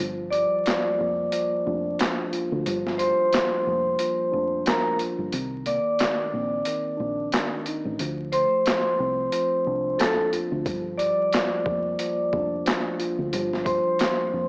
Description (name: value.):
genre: hip hop, boom-bap hip-hop.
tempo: 90 BPM.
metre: 4/4.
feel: swing 56% on 16ths.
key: G minor.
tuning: A4 = 440 Hz.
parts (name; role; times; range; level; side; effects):
mellow tine electric piano; accompaniment; 0.0-14.5 s; Eb3 to F4; -30 LUFS; equal; fast stereo tremolo, cassette tape, high-pass filter, low-pass filter.
fingered electric bass; bass; 0.0-14.5 s; F1 to D2; -32 LUFS; equal; transformer saturation.
vibraphone with hard mallets; melody; 0.3-14.5 s; A4 to D6; -24 LUFS; equal; high-pass filter, low-pass filter, cassette tape, analog delay.
boom bap sampler-style drum kit; drums; 0.3-14.2 s; handclaps, hi-hat, kick drum, snare drum; -27 LUFS; equal; overdrive, cassette tape.
room: light reverb.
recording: home recording on cassette, vinyl crackle, small speaker sound.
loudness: -22 LUFS.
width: side -32 dB against mid.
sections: 0.0-14.5 A section.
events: break 0.0-10.7.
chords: 0.0 Gm7; 5.3 Cm9; 8.0 Dm7; 10.7 Gm7.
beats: 0.66 1.33 1.99 | 2.66 3.33 3.99 4.66 | 5.33 5.99 6.66 7.33 | 7.99 8.66 9.33 9.99 | 10.66 11.33 11.99 12.66 | 13.33 13.99.